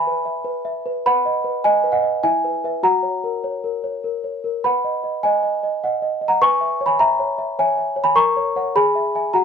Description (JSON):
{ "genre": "classical, lullaby for celesta", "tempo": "101 BPM", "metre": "3/4", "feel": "straight", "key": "B major", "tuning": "A4 = 440 Hz", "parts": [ { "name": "small celesta", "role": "solo", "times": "0.0-9.4 s", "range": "E4 to C#6", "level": "-17 LUFS", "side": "equal", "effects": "none" } ], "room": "moderate booth ambience, RT60 0.2 s", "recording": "dark, warm production", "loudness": "-17 LUFS", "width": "side -7 dB against mid", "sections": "0.0-9.4 A section", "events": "none", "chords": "0.0 E/B; 1.0 B; 2.2 E; 2.8 F#; 4.6 B; 6.4 C#m7/B; 8.2 F#/A#; 8.8 E/G#", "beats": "0.45 | 1.03 1.62 2.22 | 2.82 3.42 4.02 | 4.62 5.22 5.82 | 6.41 7.00 7.59 | 8.18 8.76 9.35" }